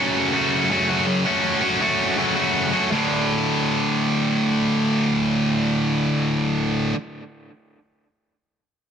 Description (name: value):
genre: rock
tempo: 82 BPM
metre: 4/4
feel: straight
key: unclear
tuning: A4 = 439 Hz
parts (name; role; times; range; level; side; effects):
- high-gain distorted guitar; solo; 0.0-7.0 s; D2 to F#4; -19 LUFS; equal; distortion
room: wet studio ambience, RT60 0.5 s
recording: dense, heavily limited modern master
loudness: -18 LUFS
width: side -8 dB against mid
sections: 0.0-2.9 A section; 2.9-5.9 B section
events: none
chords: 0.0 F#m; 2.9 D5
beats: 0.71 1.44 2.18 | 2.92 3.65 4.39 5.12